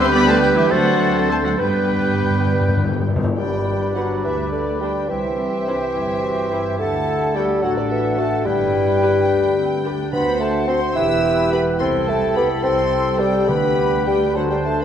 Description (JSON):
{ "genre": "quick classical-period movement for symphony orchestra", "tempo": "71 BPM (dotted quarters)", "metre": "6/8", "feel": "rubato", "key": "G major", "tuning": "A4 = 440 Hz", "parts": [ { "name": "dark studio violin section", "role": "melody", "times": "0.0-14.8 s", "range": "D5 to E6", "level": "-31 LUFS", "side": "left 4 dB", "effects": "none" }, { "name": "clear oboe", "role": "second line", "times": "0.0-14.8 s", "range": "D4 to E5", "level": "-31 LUFS", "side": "right 1 dB", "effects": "none" }, { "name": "dark studio violin section", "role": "second line", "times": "0.0-14.8 s", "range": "G4 to E6", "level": "-31 LUFS", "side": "left 2 dB", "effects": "none" }, { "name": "hollow concert flute", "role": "second line", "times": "0.0-14.8 s", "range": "F#5 to A6", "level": "-28 LUFS", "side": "left 2 dB", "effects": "none" }, { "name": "warm clarinet", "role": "second line", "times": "0.0-14.8 s", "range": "C4 to C5", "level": "-30 LUFS", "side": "left 1 dB", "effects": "none" }, { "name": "dark bassoon", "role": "accompaniment", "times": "0.0-14.8 s", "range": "D3 to E4", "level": "-21 LUFS", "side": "equal", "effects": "none" }, { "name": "dark studio viola section", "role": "accompaniment", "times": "0.0-14.8 s", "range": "G3 to C5", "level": "-28 LUFS", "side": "right 1 dB", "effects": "none" }, { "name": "dark French horn section", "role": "sustained chords", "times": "0.0-14.8 s", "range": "G3 to A4", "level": "-26 LUFS", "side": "left 4 dB", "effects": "none" }, { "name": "warm trumpet", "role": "stabs", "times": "0.0-14.8 s", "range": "A4 to C5", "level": "-26 LUFS", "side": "right 3 dB", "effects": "none" }, { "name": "dark studio cello section", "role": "bass", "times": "0.0-14.8 s", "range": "C2 to C4", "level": "-27 LUFS", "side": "right 3 dB", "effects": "none" }, { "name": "dark studio double bass section", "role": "bass", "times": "0.0-14.8 s", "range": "E1 to G2", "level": "-28 LUFS", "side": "right 3 dB", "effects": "none" }, { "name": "timpani", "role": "percussion", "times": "1.6-3.3, 8.5-14.3 s", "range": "G2 to D3", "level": "-25 LUFS", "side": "left 2 dB", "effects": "none" } ], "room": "wet concert hall reverb, RT60 2.0 s", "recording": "none", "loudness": "-16 LUFS", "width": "side -9 dB against mid", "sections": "0.0-3.4 A section; 3.4-14.8 A section", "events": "timpani fill 1.6-3.4", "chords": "0.0 G/D; 0.7 D7; 1.6 G; 5.1 C; 6.8 D; 8.5 G; 10.1 D7; 11.0 Em; 11.8 Am7/C; 13.5 G/D" }